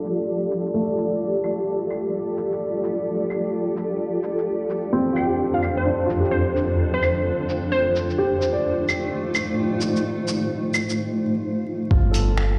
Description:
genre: future garage.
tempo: 129 BPM.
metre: 4/4.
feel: swing 64% on 16ths.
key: unclear.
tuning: A4 = 440 Hz.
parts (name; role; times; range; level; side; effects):
warm upright piano; accompaniment; 0.0-12.6 s; A3 to D5; -29 LUFS; equal; sidechain pumping, low-pass filter, tape echo.
granular cloud pad; sustained chords; 0.0-12.6 s; F2 to A5; -26 LUFS; equal; built-in reverb, sidechain pumping.
lo-fi sampler-style drum kit; drums; 0.0-12.5 s; claves, finger snaps, hi-hat, shaker; -31 LUFS; equal; none.
glassy wavetable pluck; melody; 5.2-8.2 s; C5 to G5; -28 LUFS; equal; chorus, analog delay.
dark detuned saw bass; bass; 11.9-12.6 s; G1; -22 LUFS; equal; tube saturation.
electronic kick drum; drums; 11.9-12.0 s; none; -20 LUFS; equal; none.
room: moderate huge ambient reverb, RT60 7.6 s.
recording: played on a big sound system in a bare room, large studio reverb, vinyl crackle, low-pass filter.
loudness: -23 LUFS.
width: mono.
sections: 0.0-11.9 A section.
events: filter sweep on upright piano 0.0-11.9; filter sweep 0.0-11.9.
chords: 0.0 Gsus2; 4.5 Dm7/F; 8.2 F7; 11.9 Gm9.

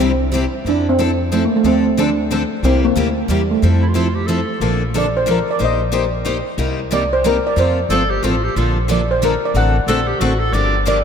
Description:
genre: acoustic string swing (jazz manouche).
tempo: 182 BPM.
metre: 3/4.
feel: swing 61% on 8ths.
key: F major, Bb major from 4.6 s.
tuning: A4 = 440 Hz.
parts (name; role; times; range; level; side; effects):
steel pan; melody; 0.0-11.0 s; G3 to F#5; -18 LUFS; right 1 dB; none.
picked steel-string acoustic guitar; accompaniment; 0.0-11.0 s; C3 to C5; -22 LUFS; left 6 dB; none.
picked steel-string acoustic guitar; accompaniment; 0.0-11.0 s; C3 to C5; -24 LUFS; right 4 dB; none.
upright bass; bass; 0.0-11.0 s; G1 to F2; -19 LUFS; equal; none.
bright clarinet; second line; 3.8-4.6, 7.9-10.8 s; E4 to D5; -24 LUFS; right 2 dB; none.
room: wet cathedral reverb, RT60 5.5 s.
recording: in a vast, echoing space.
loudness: -14 LUFS.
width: side -7 dB against mid.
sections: 0.0-4.6 A section; 4.6-11.0 B section.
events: none.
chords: 0.0 C; 0.7 Fmaj7; 1.6 Dm7; 2.6 C7; 3.6 Fmaj7; 4.6 Bbmaj7; 5.6 Eb6/Bb; 6.6 Cm7; 7.6 F; 8.6 Bbmaj7; 9.6 D7/A; 10.5 Gm7.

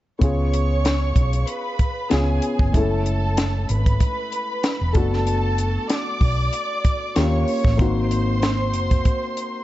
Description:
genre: lush 1970s-style soul.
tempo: 95 BPM.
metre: 4/4.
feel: swing 54% on 16ths.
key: unclear.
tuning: A4 = 440 Hz.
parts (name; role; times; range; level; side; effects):
warm studio violin section; second line; 0.2-9.6 s; G#4 to D6; -27 LUFS; right 1 dB; tape echo.
dark baby grand piano; accompaniment; 0.2-9.6 s; G#3 to A4; -26 LUFS; left 3 dB; none.
hollow-body short-scale fingered electric bass; bass; 0.2-9.0 s; E1 to D#2; -21 LUFS; equal; none.
compact cocktail drum kit; drums; 0.2-9.5 s; hi-hat, kick drum, snare drum; -21 LUFS; equal; none.
room: little or no reverb.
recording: dark, warm production, nothing above 7.9 kHz.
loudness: -18 LUFS.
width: side -15 dB against mid.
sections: 0.2-9.6 A section.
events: none.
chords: 0.2 C#7; 2.7 F#m7; 5.0 Bm7/F#; 7.2 D#7; 7.8 G#7.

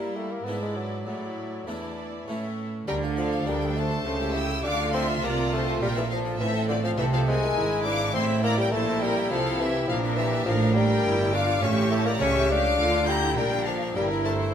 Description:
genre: classical, baroque-style concerto movement with solo episodes.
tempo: 103 BPM.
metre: 3/4.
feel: straight.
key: D minor.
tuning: A4 = 440 Hz.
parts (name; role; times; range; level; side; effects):
rich chamber violin section; melody; 0.0-14.3 s; D5 to G6; -33 LUFS; left 3 dB; none.
warm bassoon; melody; 0.0-14.5 s; D3 to G4; -28 LUFS; left 2 dB; none.
rich chamber violin section; second line; 0.0-14.5 s; F4 to Bb5; -32 LUFS; left 3 dB; none.
harpsichord; accompaniment; 0.0-14.5 s; D2 to D5; -35 LUFS; equal; none.
rich chamber viola section; accompaniment; 0.0-14.5 s; C4 to G4; -33 LUFS; right 1 dB; none.
clear symphonic cello section; bass; 0.0-14.5 s; D2 to G3; -30 LUFS; right 4 dB; none.
clear chamber double bass section; bass; 2.9-14.5 s; G1 to D2; -30 LUFS; right 2 dB; none.
room: wet recital hall reverb, RT60 1.7 s.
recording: none.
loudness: -23 LUFS.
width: side -8 dB against mid.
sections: 0.0-2.9 A section; 2.9-14.5 B section.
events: none.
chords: 0.5 E7/G#; 1.1 Asus4; 2.3 A; 2.9 Dm; 4.1 A7/C#; 4.6 Dm; 6.4 Am; 7.6 E7/G#; 8.1 Am; 9.9 Bb; 11.0 Edim/G; 11.6 A7; 12.8 Dm; 13.4 Bb; 14.0 Edim/G.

